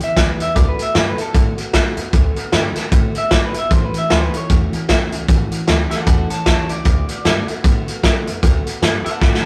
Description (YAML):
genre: rockabilly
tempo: 152 BPM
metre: 4/4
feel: swing 59% on 8ths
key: D major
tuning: A4 = 440 Hz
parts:
  - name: electric guitar through a small old amp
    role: melody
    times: 0.0-9.5 s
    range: A4 to A5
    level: -25 LUFS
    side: equal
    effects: none
  - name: picked steel-string acoustic guitar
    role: accompaniment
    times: 0.0-9.4 s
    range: A2 to G4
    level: -28 LUFS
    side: equal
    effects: none
  - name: upright bass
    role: bass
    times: 0.0-9.4 s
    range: G1 to A2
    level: -26 LUFS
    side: equal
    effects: none
  - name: vintage drum kit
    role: drums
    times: 0.0-9.5 s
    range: hi-hat, kick drum, snare drum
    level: -18 LUFS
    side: equal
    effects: none
room: light reverb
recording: rough rehearsal-room recording, warm saturation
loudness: -17 LUFS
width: mono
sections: 0.0-9.5 A section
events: drum fill 9.2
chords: 0.0 G6; 0.6 D6; 3.7 A6; 6.9 D6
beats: 0.16 | 0.56 0.95 1.34 1.74 | 2.13 2.52 2.92 3.31 | 3.70 4.10 4.49 4.88 | 5.28 5.67 6.06 6.46 | 6.85 7.25 7.64 8.03 | 8.43 8.82 9.21